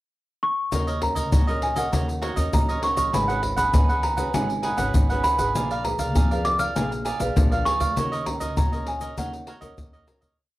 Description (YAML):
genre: samba and choro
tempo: 99 BPM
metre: 4/4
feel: straight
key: Eb minor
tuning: A4 = 439 Hz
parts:
  - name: worn celesta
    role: melody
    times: 0.4-10.0 s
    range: Gb5 to F6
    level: -26 LUFS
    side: right 1 dB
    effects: cassette tape
  - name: cavaquinho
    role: accompaniment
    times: 0.7-10.4 s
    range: Eb4 to Gb5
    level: -29 LUFS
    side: right 3 dB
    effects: cassette tape
  - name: nylon-string guitar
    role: accompaniment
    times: 0.7-10.4 s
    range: Bb2 to Cb5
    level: -33 LUFS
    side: left 1 dB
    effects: cassette tape
  - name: upright bass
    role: bass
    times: 0.7-10.4 s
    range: Ab1 to F2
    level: -30 LUFS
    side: equal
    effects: none
  - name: egg shaker, surdo and pandeiro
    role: percussion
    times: 0.7-10.4 s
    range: none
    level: -24 LUFS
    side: left 1 dB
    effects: none
room: moderate studio ambience, RT60 0.5 s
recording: home recording on cassette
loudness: -21 LUFS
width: side -17 dB against mid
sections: 0.0-0.7 pickup bar; 0.7-10.4 A section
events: fade-out 8.0-10.4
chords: 0.0 N.C.; 0.7 Ebm7; 3.1 Abm7; 5.5 Bb7b9; 8.0 Ebm7